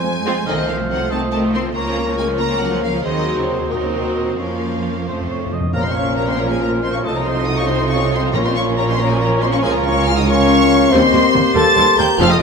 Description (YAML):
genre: quick classical-period movement for symphony orchestra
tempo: 93 BPM (dotted quarters)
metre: 6/8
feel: straight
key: Bb minor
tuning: A4 = 439 Hz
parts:
  - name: rich studio violin section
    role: melody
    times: 0.0-12.4 s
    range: Bb4 to A6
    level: -22 LUFS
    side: left 2 dB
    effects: none
  - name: dark clarinet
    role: second line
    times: 0.0-12.4 s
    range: F4 to C5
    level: -26 LUFS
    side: equal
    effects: none
  - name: mellow cor anglais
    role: second line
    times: 0.0-12.4 s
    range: Bb4 to F5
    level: -27 LUFS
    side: right 2 dB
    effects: none
  - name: dark bassoon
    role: accompaniment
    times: 0.0-12.4 s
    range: F3 to Db4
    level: -27 LUFS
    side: right 3 dB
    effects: none
  - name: rich chamber double bass section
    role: bass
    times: 0.0-12.4 s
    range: F1 to F2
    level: -25 LUFS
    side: right 4 dB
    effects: none
  - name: warm chamber cello section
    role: bass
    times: 0.0-12.3 s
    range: Db2 to C4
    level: -23 LUFS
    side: right 3 dB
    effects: none
  - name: mellow French horn section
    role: sustained chords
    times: 0.2-12.4 s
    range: Ab3 to A4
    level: -22 LUFS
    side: left 4 dB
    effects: none
  - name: rich chamber violin section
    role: second line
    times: 0.3-12.3 s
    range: C4 to Db5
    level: -28 LUFS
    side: left 3 dB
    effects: none
  - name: rich chamber viola section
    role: accompaniment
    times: 0.3-12.4 s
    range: Eb3 to Eb4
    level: -25 LUFS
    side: right 1 dB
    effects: none
  - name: timpani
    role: percussion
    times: 5.1-8.9, 12.2-12.4 s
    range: F2 to Bb2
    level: -25 LUFS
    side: left 1 dB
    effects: none
  - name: mellow hollow silver concert flute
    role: second line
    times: 5.7-12.4 s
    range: C5 to C6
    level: -24 LUFS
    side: left 4 dB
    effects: none
  - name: dark trumpet section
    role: stabs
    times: 5.7-12.4 s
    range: Ab4 to A5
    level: -22 LUFS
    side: equal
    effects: none
room: wet recital hall reverb, RT60 1.5 s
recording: none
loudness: -14 LUFS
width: side -5 dB against mid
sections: 0.0-5.7 A section; 5.7-12.4 B section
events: timpani fill 5.1-5.7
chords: 0.5 F7/C; 1.8 Bbm/Db; 3.0 Cm7b5/Eb; 4.4 Bbm/F; 5.1 F; 5.7 Bbm; 7.1 F7/C; 8.3 Bbm; 9.6 Bbm/Db; 10.9 Cm7/Eb